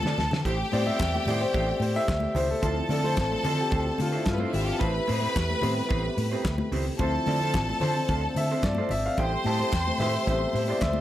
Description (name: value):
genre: disco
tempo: 110 BPM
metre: 4/4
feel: straight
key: A minor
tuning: A4 = 439 Hz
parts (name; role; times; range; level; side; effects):
- bright studio string section; second line; 0.0-11.0 s; B3 to C6; -30 LUFS; equal; none
- dark grand piano; accompaniment; 0.0-11.0 s; F3 to A5; -30 LUFS; left 2 dB; none
- dark French horn section; sustained chords; 0.0-11.0 s; C3 to G4; -36 LUFS; right 1 dB; none
- vintage muted fingered electric bass; bass; 0.0-11.0 s; G#1 to D3; -29 LUFS; equal; none
- congas; percussion; 0.0-11.0 s; none; -36 LUFS; left 4 dB; none
- electric guitar through a small old amp; accompaniment; 0.1-11.0 s; A3 to D5; -34 LUFS; right 2 dB; none
- damped 70s drum kit; drums; 0.1-11.0 s; hi-hat, kick drum, snare drum; -32 LUFS; equal; none
- group handclap; percussion; 1.0-11.0 s; none; -43 LUFS; left 2 dB; none
room: light reverb, small room ambience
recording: none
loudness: -24 LUFS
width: side -13 dB against mid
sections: 0.5-11.0 A section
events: drum fill 0.0-0.5; grand piano solo 0.5-11.0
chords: 0.5 Am7; 2.6 Dm7; 4.8 Am7; 7.0 Dm7; 9.2 Am7